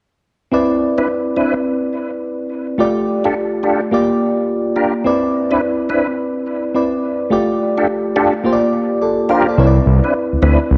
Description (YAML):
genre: R&B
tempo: 106 BPM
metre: 4/4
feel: swing 64% on 16ths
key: C major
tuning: A4 = 441 Hz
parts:
  - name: mellow FM electric piano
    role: accompaniment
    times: 0.5-10.8 s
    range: A3 to F5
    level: -18 LUFS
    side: equal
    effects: chorus
  - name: tonewheel organ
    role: stabs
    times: 1.0-10.6 s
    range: C4 to B4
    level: -22 LUFS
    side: equal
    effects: chorus vibrato, slow rotary speaker, tape echo
  - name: smooth gliding synth bass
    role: bass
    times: 9.6-10.8 s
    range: C2 to D2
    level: -14 LUFS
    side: equal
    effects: none
room: moderate echo chamber reverb, RT60 2.1 s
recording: none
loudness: -17 LUFS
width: mono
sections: 0.5-9.6 A section; 9.6-10.8 B section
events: none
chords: 0.5 Cmaj9; 2.8 F69; 3.9 Bb6; 5.0 Cmaj9; 7.3 F69; 8.4 Bb6; 9.6 Cmaj9